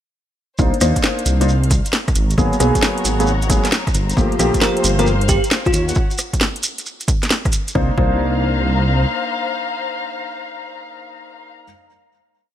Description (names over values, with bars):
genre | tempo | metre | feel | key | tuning
UK garage, two-step garage | 134 BPM | 4/4 | swing 67% on 16ths | C minor | A4 = 443 Hz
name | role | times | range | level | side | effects
warm grand piano | stabs | 0.6-11.6 s | F3 to C5 | -20 LUFS | left 1 dB | analog chorus, digital delay
dark detuned saw bass | bass | 0.6-9.1 s | G1 to Eb2 | -18 LUFS | equal | none
electronic kick drum | drums | 0.6-8.1 s | none | -19 LUFS | equal | none
shekere | percussion | 0.6-7.7 s | none | -26 LUFS | right 2 dB | none
muted studio string section | texture | 0.6-11.6 s | C5 to Bb5 | -26 LUFS | left 4 dB | sidechain pumping
garage drum kit | drums | 0.7-7.7 s | hi-hat, rim click, snare drum | -20 LUFS | equal | none
bell-like FM electric piano | melody | 4.6-5.8 s | F4 to Bb4 | -22 LUFS | equal | chorus, phaser, digital delay
room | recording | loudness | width
light reverb, studio reverb | bright 1980s-style digital production | -15 LUFS | side -11 dB against mid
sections
0.6-7.8 groove; 7.8-11.3 final chord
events
fade-in on string section 0.6-6.0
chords
0.6 Cm9; 2.2 Abm9; 3.9 Gm9; 5.7 Ebm7; 7.8 Cm9